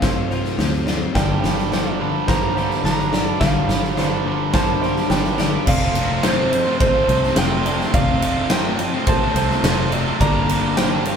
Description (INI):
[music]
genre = post-rock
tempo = 106 BPM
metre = 4/4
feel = straight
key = unclear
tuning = A4 = 440 Hz
[part]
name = electric slide guitar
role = melody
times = 0.0-11.2 s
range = C5 to Bb5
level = -24 LUFS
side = right 1 dB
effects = none
[part]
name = evolving wavetable pad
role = sustained chords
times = 0.0-11.2 s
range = G3 to F5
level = -34 LUFS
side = right 1 dB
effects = none
[part]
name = felt-muted upright piano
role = arpeggios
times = 0.0-11.2 s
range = C5 to D5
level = -30 LUFS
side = right 6 dB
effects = none
[part]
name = twelve-string electric guitar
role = arpeggios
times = 0.0-5.7 s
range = F2 to G4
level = -31 LUFS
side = left 3 dB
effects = none
[part]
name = sludgy distorted guitar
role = riff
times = 0.0-11.2 s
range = F2 to D4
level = -24 LUFS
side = left 6 dB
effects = overdrive
[part]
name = fingered electric bass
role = bass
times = 0.0-11.2 s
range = F1 to D2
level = -25 LUFS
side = equal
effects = none
[part]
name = huge arena drum kit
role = drums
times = 0.0-11.2 s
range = crash cymbal, kick drum, ride cymbal, snare drum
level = -20 LUFS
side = equal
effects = none
[part]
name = biting overdriven guitar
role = riff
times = 1.2-11.2 s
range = F2 to D4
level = -25 LUFS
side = right 8 dB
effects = none
[sound]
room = moderate studio reverb, RT60 0.8 s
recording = band playing live in one room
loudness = -16 LUFS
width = side -7 dB against mid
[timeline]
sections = 0.0-5.7 A section; 5.7-11.2 B section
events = build-up 0.0-5.7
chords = 0.0 F; 1.2 Gm7; 5.7 F; 10.2 Gm7